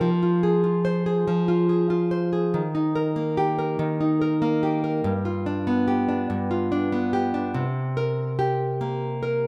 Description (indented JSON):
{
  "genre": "pop",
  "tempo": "48 BPM (dotted quarters)",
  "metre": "6/8",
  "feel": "straight",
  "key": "C minor",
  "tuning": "A4 = 440 Hz",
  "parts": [
    { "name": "nylon-string guitar", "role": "solo", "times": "0.0-9.5 s", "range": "G2 to C5", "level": "-24 LUFS", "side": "equal", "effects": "none" }
  ],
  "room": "moderate lush hall reverb, RT60 2.7 s",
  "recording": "rough home demo mix",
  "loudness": "-24 LUFS",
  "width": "mono",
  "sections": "0.0-7.6 A section; 7.6-9.5 B section",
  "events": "none",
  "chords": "0.0 Fm; 2.5 Eb; 5.0 G7; 7.6 C7(no3)",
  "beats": "| 0.01 1.27 | 2.53 3.79 | 5.04 6.30 | 7.55 8.81"
}